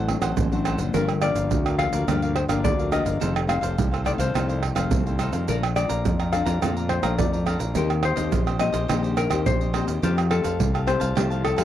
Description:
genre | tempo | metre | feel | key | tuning
samba and choro | 106 BPM | 4/4 | straight | unclear | A4 = 440 Hz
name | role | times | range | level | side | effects
hollow-body jazz guitar | melody | 0.0-11.6 s | G4 to F5 | -28 LUFS | left 6 dB | none
cavaquinho | accompaniment | 0.0-11.6 s | D4 to Bb5 | -33 LUFS | equal | none
nylon-string guitar | accompaniment | 0.0-11.6 s | F2 to G4 | -30 LUFS | left 7 dB | none
fuzz fingered electric bass | bass | 0.0-11.6 s | F1 to F2 | -25 LUFS | equal | overdrive
surdo, pandeiro, tamborim and egg shaker | percussion | 0.1-11.6 s | none | -26 LUFS | right 4 dB | none
room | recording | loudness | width
little or no reverb | dry, close 1970s-style studio recording | -21 LUFS | side -11 dB against mid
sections
0.0-11.6 A section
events
none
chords
0.0 D7/A; 0.9 Gm7; 3.2 F7; 5.5 Bbmaj7; 7.8 Eb6; 10.0 Fadd9

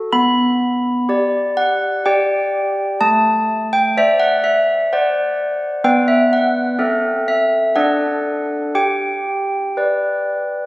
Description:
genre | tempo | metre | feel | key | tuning
classical, tune for handbells | 62 BPM | 3/4 | uneven beats | G major | A4 = 440 Hz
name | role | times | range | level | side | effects
handbells | solo | 0.0-10.7 s | A3 to B5 | -14 LUFS | equal | none
room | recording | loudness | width
wet concert hall reverb, RT60 2.3 s | recorded on a phone in the room, studio reverb, compression | -14 LUFS | side -20 dB against mid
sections
0.0-10.7 A section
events
none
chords
0.1 G/B; 3.0 D7/A; 5.9 Bmadd11; 6.8 Am/C; 7.8 D; 8.8 G

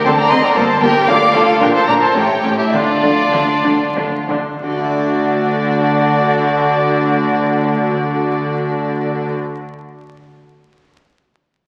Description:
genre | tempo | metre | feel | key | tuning
classical, baroque-style concerto movement with solo episodes | 86-118 BPM | 3/4 | straight | unclear | A4 = 439 Hz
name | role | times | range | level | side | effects
rich violin | melody | 0.0-9.3 s | F4 to F5 | -22 LUFS | equal | none
warm studio violin section | second line | 0.0-9.3 s | D4 to D5 | -22 LUFS | equal | none
harpsichord | accompaniment | 0.0-9.6 s | G2 to D5 | -30 LUFS | equal | none
warm chamber double bass section | bass | 0.0-9.3 s | G1 to D2 | -26 LUFS | equal | none
warm chamber violin section | melody | 0.1-9.3 s | D5 to D6 | -22 LUFS | equal | none
rich chamber viola section | accompaniment | 0.1-9.3 s | Bb3 to F#4 | -23 LUFS | equal | none
warm chamber cello section | bass | 0.1-9.3 s | G2 to D3 | -24 LUFS | equal | none
room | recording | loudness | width
wet concert hall reverb, RT60 2.0 s | very old 78 rpm record, vinyl crackle | -15 LUFS | mono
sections
0.0-4.6 A section; 4.6-8.8 B section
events
slowing down 0.3-4.6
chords
0.0 D7; 0.6 Gm; 1.1 Dm; 1.6 Gm/Bb; 2.2 A7; 2.7 Dm; 4.6 D

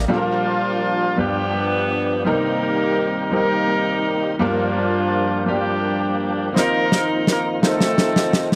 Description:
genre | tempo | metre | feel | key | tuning
slow gospel | 56 BPM (dotted quarters) | 6/8 | straight | Bb major | A4 = 442 Hz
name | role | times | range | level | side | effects
clear grand piano | accompaniment | 0.0-8.6 s | G2 to G5 | -26 LUFS | equal | tape echo
tonewheel organ | sustained chords | 0.0-8.6 s | D3 to G4 | -28 LUFS | equal | slow rotary speaker, overdrive, chorus vibrato
mellow horn section | melody | 0.1-8.6 s | F3 to Bb4 | -23 LUFS | equal | tape echo
snare drum | drums | 6.6-8.6 s | none | -21 LUFS | equal | tape echo
room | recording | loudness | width
moderate spring reverb, RT60 1.9 s, studio ambience | echo-heavy mix | -20 LUFS | mono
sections
0.1-8.6 A section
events
drum fill 6.5-8.6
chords
0.1 Bb6; 1.2 G7; 2.2 Cm7; 4.4 Gm7; 6.5 F7sus4; 7.6 F7

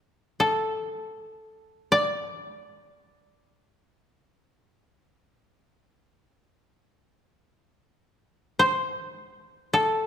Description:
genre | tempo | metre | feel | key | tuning
japanese traditional, Japanese chamber music | free time | none | none | unclear | A4 = 439 Hz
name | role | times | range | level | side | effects
koto | solo | 0.0-10.1 s | D4 to D5 | -23 LUFS | left 1 dB | none
room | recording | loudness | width
moderate concert hall reverb, RT60 2.0 s | minimal, uncompressed stereo recording | -24 LUFS | side -9 dB against mid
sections
0.0-10.1 A section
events
none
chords
none

